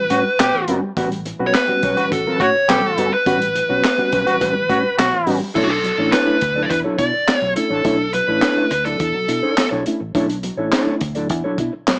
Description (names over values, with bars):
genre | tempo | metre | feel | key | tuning
funk | 105 BPM | 4/4 | straight | B minor | A4 = 441 Hz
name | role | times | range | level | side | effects
dark smooth lead guitar | melody | 0.0-9.7 s | F#4 to D5 | -21 LUFS | equal | overdrive
mellow electric guitar | accompaniment | 0.0-11.9 s | G3 to D5 | -25 LUFS | equal | harmonic tremolo
reed electric piano | stabs | 0.0-12.0 s | A2 to F#4 | -26 LUFS | equal | harmonic tremolo
brilliant trombone | second line | 0.1-5.4 s | F#4 to G4 | -23 LUFS | equal | none
vintage muted fingered electric bass | bass | 0.1-11.9 s | G1 to B2 | -31 LUFS | equal | none
crunchy breakbeat drum kit | drums | 0.1-12.0 s | crash cymbal, handclaps, hi-hat, kick drum, snare drum | -24 LUFS | equal | none
room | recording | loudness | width
moderate small room ambience, RT60 0.5 s | small speaker sound | -18 LUFS | mono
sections
0.0-5.6 A section; 5.6-12.0 B section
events
none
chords
0.0 A13; 5.6 Bm11